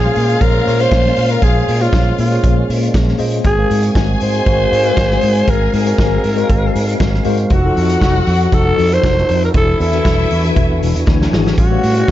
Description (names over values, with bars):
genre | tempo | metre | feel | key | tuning
disco | 118 BPM | 4/4 | straight | Bb minor | A4 = 442 Hz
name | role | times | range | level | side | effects
raspy alto saxophone | melody | 0.0-12.1 s | F4 to C5 | -18 LUFS | equal | tape echo
rich studio string section | second line | 0.0-12.1 s | C#4 to Ab5 | -24 LUFS | left 3 dB | none
mellow tine electric piano | accompaniment | 0.0-12.1 s | E3 to Ab5 | -20 LUFS | left 4 dB | medium stereo tremolo
percussive tonewheel organ | sustained chords | 0.0-12.1 s | E3 to G#5 | -24 LUFS | right 1 dB | overdrive, chorus vibrato, slow rotary speaker
fingered electric bass | bass | 0.0-12.1 s | E1 to Bb2 | -16 LUFS | equal | none
vintage drum kit | drums | 0.2-12.1 s | hi-hat, kick drum, snare drum | -17 LUFS | equal | none
room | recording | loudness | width
small room ambience | dark, warm production, nothing above 7.5 kHz | -11 LUFS | side -13 dB against mid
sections
0.0-11.6 A section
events
drum fill 11.1-11.6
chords
0.0 Bbm9; 3.5 Ab13; 7.5 F7b9; 9.5 E9; 11.6 A13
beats
0.41 0.92 | 1.42 1.93 2.44 2.94 | 3.45 3.96 4.46 4.97 | 5.48 5.99 6.50 7.00 | 7.51 8.02 8.53 9.04 | 9.54 10.05 10.56 11.07 | 11.58 12.09